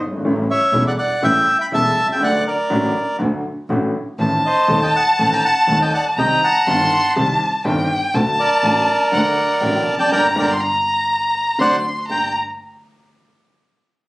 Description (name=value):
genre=tango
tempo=122 BPM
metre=4/4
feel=rubato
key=G harmonic minor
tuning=A4 = 441 Hz
part: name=warm upright piano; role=accompaniment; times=0.0-12.3 s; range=Eb1 to A4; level=-22 LUFS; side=left 1 dB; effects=none
part: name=warm double bass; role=bass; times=0.0-12.3 s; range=E1 to Eb2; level=-25 LUFS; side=equal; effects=none
part: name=bandoneon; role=melody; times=0.5-12.3 s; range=Bb4 to B5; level=-17 LUFS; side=right 1 dB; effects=none
part: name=warm violin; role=second line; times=4.2-12.3 s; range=F#5 to C6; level=-18 LUFS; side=left 1 dB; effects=none
room=moderate large studio reverb, RT60 0.9 s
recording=recorded on a phone in the room, club reverb, compression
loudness=-15 LUFS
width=side -20 dB against mid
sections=0.0-12.1 A section; 12.1-14.1 B section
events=band accent 10.1-12.1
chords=0.2 A7; 2.2 D; 4.2 Adim; 6.2 Cm; 8.1 D; 10.1 Gm; 11.6 D7; 12.1 Gm